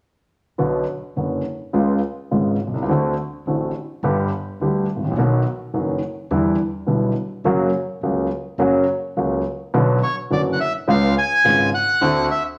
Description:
tango; 105 BPM; 4/4; rubato; A4 = 438 Hz
warm concert grand piano; accompaniment; 0.6-12.3 s; F#1 to G4; -21 LUFS; equal
upright bass; bass; 0.6-12.2 s; F#1 to E2; -34 LUFS; equal
bandoneon; melody; 10.0-12.4 s; C#5 to G#5; -21 LUFS; equal
wet large studio reverb, RT60 1.1 s; -20 LUFS; mono
0.6-9.7 A section; 9.7-12.6 B section
0.6 Bm; 1.7 C#7; 2.9 D7; 4.0 G; 5.2 B; 6.3 Em7; 7.4 F#; 9.7 Bm; 10.9 C#7; 12.0 D7
| 0.59 1.16 1.74 2.31 | 2.88 3.46 4.03 4.60 | 5.17 5.74 6.31 6.88 | 7.45 8.02 8.59 9.16 | 9.73 10.30 10.87 11.44 | 12.01

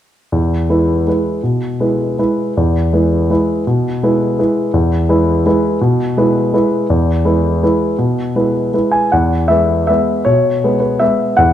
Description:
classical, piano waltz; 149-174 BPM; 3/4; rubato; E major; A4 = 439 Hz
warm concert grand piano; solo; 0.3-11.5 s; E2 to G#5; -12 LUFS; equal
moderate recital hall reverb, RT60 1.5 s; -12 LUFS; side -11 dB against mid
0.3-9.1 A section; 9.1-11.5 B section
0.3 E
| 0.32 0.69 1.06 | 1.43 1.80 2.18 | 2.56 2.92 3.30 | 3.67 4.02 4.38 | 4.74 5.09 5.45 | 5.81 6.17 6.53 | 6.89 7.24 7.62 | 7.99 8.35 8.73 | 9.13 9.50 9.89 | 10.26 10.63 11.01 | 11.38

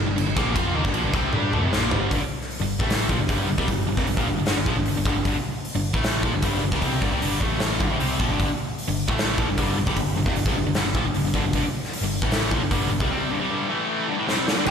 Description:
hard rock; 153 BPM; 4/4; straight; G dorian; A4 = 439 Hz
crunchy overdriven guitar; riff; 0.0-14.7 s; F2 to G4; -27 LUFS; left 8 dB
tight distorted guitar; riff; 0.0-14.7 s; F2 to G4; -28 LUFS; right 10 dB; distortion, slapback echo
vintage muted picked electric bass; bass; 0.0-14.7 s; F1 to G2; -28 LUFS; equal
big rock drum kit; drums; 0.2-14.7 s; crash cymbal, hi-hat, kick drum, snare drum, toms; -24 LUFS; equal
distorted electric guitar; riff; 14.7 s; G2 to D3; -21 LUFS; right 1 dB; overdrive
moderate lush hall reverb, RT60 2.2 s; -21 LUFS; side -7 dB against mid
0.0-2.1 A section; 2.1-14.7 B section
drum fill 1.3-2.1, 14.3-14.7
0.0 Gm; 7.4 A5; 7.8 Gm; 13.7 A5; 14.1 Gm
0.17 | 0.56 0.95 1.34 1.73 | 2.12 2.51 2.90 3.29 | 3.68 4.07 4.47 4.86 | 5.25 5.64 6.04 6.43 | 6.82 7.22 7.61 8.00 | 8.40 8.79 9.18 9.58 | 9.97 10.36 10.76 11.15 | 11.54 11.93 12.32 12.72 | 13.11 13.50 13.89 14.28 | 14.67

